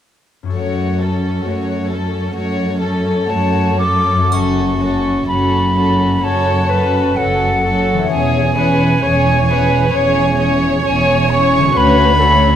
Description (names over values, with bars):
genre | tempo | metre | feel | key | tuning
classical, slow romantic movement for symphony orchestra | 64 BPM | 4/4 | uneven beats, rubato | F# minor | A4 = 440 Hz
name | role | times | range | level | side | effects
concert harp | arpeggios | 0.4-12.6 s | F#2 to C#5 | -24 LUFS | left 6 dB | none
warm chamber violin section | melody | 0.5-12.6 s | A4 to C#5 | -23 LUFS | left 6 dB | none
warm chamber violin section | second line | 0.5-12.6 s | C#4 to A4 | -21 LUFS | left 2 dB | none
dark chamber cello section | bass | 0.5-12.5 s | D2 to F#2 | -19 LUFS | right 1 dB | none
warm chamber viola section | accompaniment | 0.6-12.6 s | A3 to C#5 | -21 LUFS | right 2 dB | none
silver concert flute | second line | 3.3-12.6 s | F#5 to D6 | -17 LUFS | equal | none
dark chamber double bass section | bass | 4.3-12.5 s | E1 to D2 | -20 LUFS | right 3 dB | none
triangle | percussion | 4.3-6.2 s | none | -36 LUFS | left 3 dB | none
room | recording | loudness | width
moderate scoring stage reverb, RT60 2.0 s | none | -12 LUFS | side -10 dB against mid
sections
0.5-4.3 A section; 4.3-12.6 B section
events
none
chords
0.5 F#m; 8.1 C#m/E; 11.8 Dmaj7